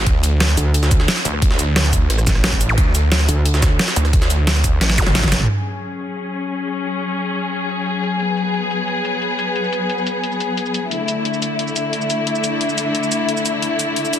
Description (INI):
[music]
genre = dark technical drum and bass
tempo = 177 BPM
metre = 4/4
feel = straight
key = F# minor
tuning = A4 = 440 Hz
[part]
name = snarling distorted saw bass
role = bass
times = 0.0-5.5 s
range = A1 to D2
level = -17 LUFS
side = equal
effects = distortion, tube saturation, sidechain pumping
[part]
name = dubstep drum kit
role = drums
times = 0.1-14.2 s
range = cabasa, hi-hat, rim click, snare drum, toms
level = -21 LUFS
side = equal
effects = overdrive, low-pass filter on hats, low-pass filter on perc, low-pass filter on snare, low-pass filter on toms
[part]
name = electronic kick drum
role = drums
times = 0.1-5.3 s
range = none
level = -17 LUFS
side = equal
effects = overdrive
[part]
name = jungle sampler-style drum kit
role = drums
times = 0.1-5.4 s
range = hi-hat, snare drum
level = -25 LUFS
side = right 1 dB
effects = high-pass filter on hats, high-pass filter on snare, high-pass filter on room
[part]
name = metallic wobble bass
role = bass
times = 0.6-1.1, 3.3-3.8 s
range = D2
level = -16 LUFS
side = equal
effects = chorus
[part]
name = zap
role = sound effects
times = 2.7-2.8, 5.0-5.1 s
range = none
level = -26 LUFS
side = equal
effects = none
[part]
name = warm studio string section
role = sustained chords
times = 5.5-14.2 s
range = D3 to G#4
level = -19 LUFS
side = left 2 dB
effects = sidechain pumping, low-pass filter
[sound]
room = light reverb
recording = dense, heavily limited modern master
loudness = -16 LUFS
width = side -10 dB against mid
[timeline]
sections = 0.0-5.5 A section; 5.5-14.2 B section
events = drop 0.0-5.5; drum fill 4.8-5.5; filter sweep on drum 5.5-14.2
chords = 0.1 D5; 5.5 F#5; 10.9 D5